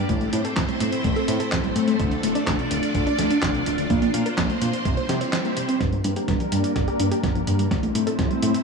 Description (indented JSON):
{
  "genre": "italo disco",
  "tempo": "126 BPM",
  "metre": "4/4",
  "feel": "straight",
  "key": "G dorian",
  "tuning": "A4 = 440 Hz",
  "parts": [
    { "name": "string machine, full ensemble", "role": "sustained chords", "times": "0.0-8.6 s", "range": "G3 to D5", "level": "-25 LUFS", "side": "equal", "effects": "ensemble chorus" },
    { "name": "warbly dusty pluck", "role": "arpeggios", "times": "0.0-8.5 s", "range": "D2 to C5", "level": "-27 LUFS", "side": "right 1 dB", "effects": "chorus, digital delay" },
    { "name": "fat analog bass", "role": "bass", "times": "0.0-8.5 s", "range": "D1 to C3", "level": "-26 LUFS", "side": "left 1 dB", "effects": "tube saturation, digital delay" },
    { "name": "dusty soul sampler-style drum kit", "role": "drums", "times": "0.1-8.6 s", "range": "handclaps, hi-hat, snare drum", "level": "-29 LUFS", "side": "right 1 dB", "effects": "none" },
    { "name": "electronic kick drum", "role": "drums", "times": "0.1-8.3 s", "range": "none", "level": "-27 LUFS", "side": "right 1 dB", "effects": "none" }
  ],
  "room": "light reverb, digital ambience",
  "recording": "none",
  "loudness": "-20 LUFS",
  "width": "side -4 dB against mid",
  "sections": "0.0-5.8 A section; 5.8-8.6 B section",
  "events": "drum fill 5.8-8.6",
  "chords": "0.1 Am; 2.0 Dm; 3.9 Bbadd9; 4.9 C; 5.8 Gm; 7.7 Am"
}